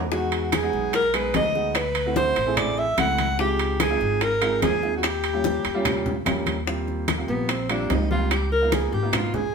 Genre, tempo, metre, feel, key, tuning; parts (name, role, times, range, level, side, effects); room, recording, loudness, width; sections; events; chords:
Afro-Cuban jazz; 146 BPM; 4/4; straight; A4 = 440 Hz
upright bass; bass; 0.0-9.5 s; Ab1 to Fb2; -28 LUFS; equal
breathy alto saxophone; melody; 0.1-9.5 s; Cb4 to F#5; -24 LUFS; equal
warm concert grand piano; accompaniment; 0.1-9.4 s; G3 to G#4; -29 LUFS; right 2 dB
bongos; percussion; 0.1-9.5 s; -31 LUFS; left 3 dB
congas; percussion; 0.1-9.5 s; -31 LUFS; left 3 dB
timbales; percussion; 0.3-9.3 s; -29 LUFS; right 5 dB
claves; percussion; 0.5-9.3 s; -36 LUFS; right 2 dB
wet studio reverb, RT60 0.9 s; band playing live in one room; -20 LUFS; side -5 dB against mid
0.0-6.7 A section; 6.7-9.5 B section
alto saxophone solo 6.7-9.5
0.1 Emaj7; 1.8 D9; 3.4 Dbmaj7; 5.0 Eb7; 6.7 Eb6; 8.3 Db13